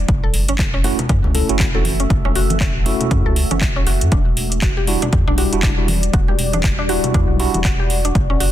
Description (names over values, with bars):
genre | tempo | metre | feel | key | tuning
deep house | 119 BPM | 4/4 | swing 59% on 16ths | E dorian | A4 = 440 Hz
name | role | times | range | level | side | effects
deep dark ambient pad | sustained chords | 0.0-8.5 s | G3 to E5 | -26 LUFS | equal | chorus, built-in reverb, sidechain pumping
round analog bass | bass | 0.0-8.5 s | E1 to F#2 | -20 LUFS | equal | none
electronic kick drum | drums | 0.1-8.3 s | none | -19 LUFS | equal | overdrive
house drum kit | drums | 0.1-8.5 s | handclaps, hi-hat | -23 LUFS | equal | overdrive
mallet-like synth pluck | arpeggios | 0.2-8.5 s | C#4 to A4 | -26 LUFS | equal | chorus, phaser, sidechain pumping, tape echo
tine electric piano | stabs | 0.8-7.6 s | G3 to A4 | -22 LUFS | right 1 dB | medium stereo tremolo, sidechain pumping, tape echo
congas | percussion | 1.0-7.6 s | none | -26 LUFS | left 1 dB | overdrive
room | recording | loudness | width
digital ambience | dense, heavily limited modern master | -14 LUFS | side -12 dB against mid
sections
0.0-8.5 A section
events
none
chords
0.1 F#m7; 4.1 Em9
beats
| 0.09 0.59 1.09 1.60 | 2.10 2.61 3.11 3.62 | 4.12 4.62 5.13 5.63 | 6.14 6.64 7.14 7.65 | 8.15